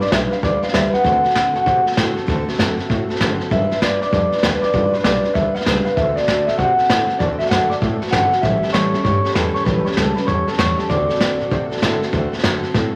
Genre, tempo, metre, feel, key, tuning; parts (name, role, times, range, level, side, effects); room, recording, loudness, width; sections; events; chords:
rockabilly; 195 BPM; 4/4; swing 64% on 8ths; D mixolydian; A4 = 440 Hz
electric guitar through a small old amp; melody; 0.0-13.0 s; A4 to G5; -22 LUFS; equal
picked steel-string acoustic guitar; accompaniment; 0.0-13.0 s; A2 to B4; -24 LUFS; equal
upright bass; bass; 0.0-12.9 s; F#1 to C3; -26 LUFS; equal
vintage brush drum kit; drums; 0.0-12.8 s; hi-hat, kick drum, snare drum; -24 LUFS; equal
wet large studio reverb, RT60 1.3 s; vinyl crackle; -18 LUFS; mono
0.0-13.0 A section
drum fill 12.7
0.0 G7; 1.0 D7; 3.5 G7; 6.0 D7; 8.4 A7; 10.9 D7